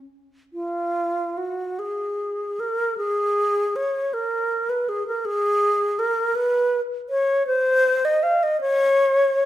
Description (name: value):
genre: classical, free, expressive piece for unaccompanied alto flute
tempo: 31-55 BPM (dotted quarters)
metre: 6/8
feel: rubato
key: Db mixolydian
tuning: A4 = 435 Hz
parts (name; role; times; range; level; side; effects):
- bright wooden-headed alto flute; solo; 0.5-9.5 s; F4 to F5; -20 LUFS; equal; none
room: moderate recital hall reverb, RT60 1.5 s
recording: minimal, uncompressed stereo recording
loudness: -20 LUFS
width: side -13 dB against mid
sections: 0.5-9.5 A section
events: none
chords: none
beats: | 0.54 1.80 | 2.99 4.14 | 5.27 6.38 | 7.48 8.63